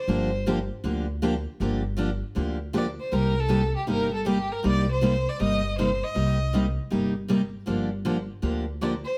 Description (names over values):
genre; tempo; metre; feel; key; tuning
acoustic string swing (jazz manouche); 158 BPM; 4/4; swing 63% on 8ths; G minor; A4 = 440 Hz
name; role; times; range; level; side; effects
clear violin; melody; 0.0-0.5, 2.8-9.2 s; G4 to Eb5; -31 LUFS; equal; none
picked steel-string acoustic guitar; accompaniment; 0.1-8.9 s; C3 to G4; -28 LUFS; equal; none
upright bass; bass; 0.1-9.0 s; G1 to D2; -31 LUFS; equal; none
room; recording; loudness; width
light reverb; none; -26 LUFS; mono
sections
0.0-9.2 A section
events
none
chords
0.0 Gm7; 3.1 Cm7; 7.7 Gm7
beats
| 0.08 0.46 0.84 1.22 | 1.60 1.98 2.36 2.74 | 3.12 3.50 3.88 4.26 | 4.63 5.01 5.39 5.77 | 6.15 6.53 6.91 7.29 | 7.67 8.05 8.43 8.81